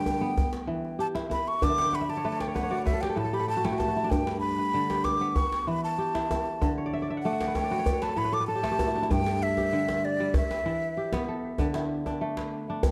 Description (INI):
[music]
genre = west african traditional, West African string and xylophone music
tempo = 96 BPM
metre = 4/4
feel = straight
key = G lydian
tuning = A4 = 441 Hz
[part]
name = breathy mellow silver concert flute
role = melody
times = 0.0-11.3 s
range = D5 to D6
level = -32 LUFS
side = equal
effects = analog delay
[part]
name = kora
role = arpeggios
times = 0.0-12.9 s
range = G2 to G5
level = -32 LUFS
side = equal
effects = analog delay
[part]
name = djembe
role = percussion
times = 0.1-12.9 s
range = none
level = -33 LUFS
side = equal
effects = none
[sound]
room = moderate spring reverb, RT60 1.3 s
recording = dark, warm production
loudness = -28 LUFS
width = mono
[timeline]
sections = 0.0-9.1 A section; 9.1-12.9 B section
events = flute solo 0.0-9.1; kora fill 1.7-4.1, 6.8-9.1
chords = 0.4 Em; 1.6 D; 2.9 N.C.; 4.1 G; 5.4 Em; 6.6 D; 7.9 N.C.; 9.1 G5; 10.3 Em; 11.6 D5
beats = 0.37 0.99 | 1.62 2.24 2.87 3.49 | 4.11 4.74 5.36 5.98 | 6.61 7.23 7.85 8.47 | 9.10 9.72 10.35 10.97 | 11.59 12.22 12.84